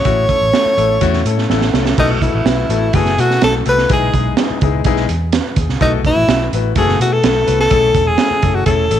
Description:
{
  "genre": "uptempo 1960s-style soul",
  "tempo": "126 BPM",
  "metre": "4/4",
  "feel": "straight",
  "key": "B mixolydian",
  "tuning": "A4 = 440 Hz",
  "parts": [
    { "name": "breathy tenor saxophone", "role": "melody", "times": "0.0-9.0 s", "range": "D#4 to C#5", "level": "-16 LUFS", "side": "equal", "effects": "none" },
    { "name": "warm grand piano", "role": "accompaniment", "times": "0.0-9.0 s", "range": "G#3 to B4", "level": "-19 LUFS", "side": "left 13 dB", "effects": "none" },
    { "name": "vintage muted fingered electric bass", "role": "bass", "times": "0.0-9.0 s", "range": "E1 to B2", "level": "-18 LUFS", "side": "equal", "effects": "none" },
    { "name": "crunchy breakbeat drum kit", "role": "drums", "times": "0.0-9.0 s", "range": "crash cymbal, hi-hat, kick drum, snare drum", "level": "-18 LUFS", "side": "right 4 dB", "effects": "vintage 12-bit sampler grit" }
  ],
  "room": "light reverb, small room ambience",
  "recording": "1960s-style stereo",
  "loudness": "-12 LUFS",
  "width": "side -10 dB against mid",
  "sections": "0.0-2.0 A section; 2.0-9.0 B section",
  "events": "drum fill 1.5-2.0",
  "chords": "0.0 A; 2.0 B7sus4; 3.9 Emaj7/B; 5.8 B7sus4; 7.7 Amaj7",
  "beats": "| 0.06 0.54 1.02 1.50 | 1.98 2.46 2.94 3.42 | 3.89 4.37 4.85 5.33 | 5.80 6.28 6.76 7.24 | 7.71 8.19 8.67"
}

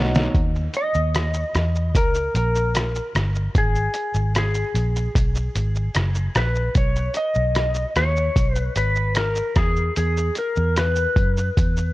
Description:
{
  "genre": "indie pop, bedroom pop",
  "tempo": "75 BPM",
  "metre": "4/4",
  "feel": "straight",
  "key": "unclear",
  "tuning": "A4 = 440 Hz",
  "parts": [
    { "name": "electric guitar through a small old amp", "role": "accompaniment", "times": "0.0-0.9 s", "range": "F#3 to D#4", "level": "-34 LUFS", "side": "left 2 dB", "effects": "wide subtle chorus, vibrato effect" },
    { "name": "vintage muted fingered electric bass", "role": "bass", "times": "0.0-11.9 s", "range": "F#1 to F#2", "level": "-22 LUFS", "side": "equal", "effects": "none" },
    { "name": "lo-fi sampler-style drum kit", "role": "drums", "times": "0.1-11.9 s", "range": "hi-hat, kick drum, rim click, shaker, snare drum", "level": "-22 LUFS", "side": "equal", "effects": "none" },
    { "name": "clean lap steel guitar", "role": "melody", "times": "0.8-11.9 s", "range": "G#4 to D#5", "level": "-24 LUFS", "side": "left 1 dB", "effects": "lush chorus" }
  ],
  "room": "little or no reverb",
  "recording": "worn, warbling old tape, cassette tape, warbly pitch drift",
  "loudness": "-19 LUFS",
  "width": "side -18 dB against mid",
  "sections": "0.3-11.9 A section",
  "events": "drum fill 0.0-0.3",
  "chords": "0.3 D#5; 3.5 G#sus2; 6.8 B6; 9.6 E5",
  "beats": "| 0.35 1.15 1.95 2.75 | 3.55 4.35 5.15 5.96 | 6.76 7.56 8.36 9.16 | 9.97 10.77 11.57"
}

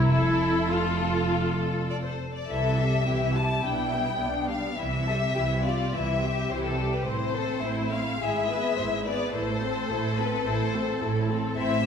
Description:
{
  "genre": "quick classical-period movement for string orchestra",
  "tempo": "105 BPM",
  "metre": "4/4",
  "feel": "rubato",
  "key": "C major",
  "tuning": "A4 = 440 Hz",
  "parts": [
    { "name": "rich studio violin section", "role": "melody", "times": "0.0-11.9 s", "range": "A4 to A5", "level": "-30 LUFS", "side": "left 5 dB", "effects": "none" },
    { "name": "rich studio viola section", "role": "accompaniment", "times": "0.0-11.9 s", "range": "E3 to A4", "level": "-30 LUFS", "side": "equal", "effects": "none" },
    { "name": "rich studio cello section", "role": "bass", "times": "0.0-11.9 s", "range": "F2 to C3", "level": "-30 LUFS", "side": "right 1 dB", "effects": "none" },
    { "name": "rich studio double bass section", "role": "bass", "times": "0.0-11.9 s", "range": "F1 to C2", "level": "-32 LUFS", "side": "right 2 dB", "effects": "none" },
    { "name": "rich studio violin section", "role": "second line", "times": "0.1-11.9 s", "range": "D4 to C5", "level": "-33 LUFS", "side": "left 2 dB", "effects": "none" }
  ],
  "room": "wet recital hall reverb, RT60 1.4 s",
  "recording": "recorded in a church or concert hall",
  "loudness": "-24 LUFS",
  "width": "side -7 dB against mid",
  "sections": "0.0-2.5 A section; 2.5-11.9 B section",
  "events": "none",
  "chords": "0.1 F; 2.5 C; 3.6 G/B; 4.8 C; 7.1 Am; 8.2 E/G#; 9.3 Am",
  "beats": "| 0.09 0.70 1.30 1.90 | 2.49 3.06 3.64 4.21 | 4.79 5.36 5.93 6.50 | 7.07 7.64 8.21 8.78 | 9.34 9.90 10.46 11.02 | 11.58"
}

